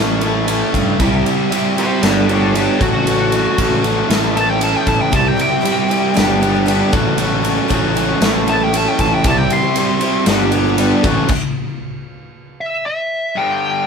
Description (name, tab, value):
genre	classic rock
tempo	116 BPM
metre	4/4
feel	straight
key	unclear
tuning	A4 = 439 Hz
part	distorted electric guitar	riff	0.0-13.9 s	G2 to A4	-20 LUFS	left 7 dB	overdrive
part	sludgy distorted guitar	riff	0.0-11.3 s	C3 to A4	-18 LUFS	right 6 dB	overdrive
part	fuzz picked electric bass	bass	0.0-11.3 s	G1 to G2	-20 LUFS	equal	overdrive
part	big rock drum kit	drums	0.2-11.4 s	crash cymbal, kick drum, ride cymbal, snare drum	-20 LUFS	left 1 dB	none
part	fuzz lead guitar	melody	1.8-13.9 s	F#4 to C6	-19 LUFS	equal	wah, distortion
part	picked swing-style acoustic guitar	accompaniment	5.1-11.3 s	G2 to G4	-25 LUFS	left 6 dB	none
part	string machine, cellos	sustained chords	5.1-11.0 s	G3 to E5	-28 LUFS	left 1 dB	none
room	moderate studio reverb, RT60 0.7 s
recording	band playing live in one room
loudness	-13 LUFS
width	side -6 dB against mid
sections	0.0-13.4 A section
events	half time 0.0-13.4; lead electric guitar solo 0.0-13.4; stop 11.3-13.4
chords	0.0 A; 1.0 C; 2.0 G; 2.8 F#m/A; 4.1 A; 5.1 C; 6.2 G; 6.9 F#m/A; 8.2 A6; 9.3 C; 10.3 G; 11.1 F#m/A; 12.3 N.C.; 13.4 G5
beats	0.48 | 1.00 1.52 2.03 2.55 | 3.06 3.58 4.10 4.61 | 5.13 5.64 6.16 6.67 | 7.19 7.71 8.22 8.74 | 9.25 9.77 10.28 10.80 | 11.31 11.82 12.34 12.85 | 13.36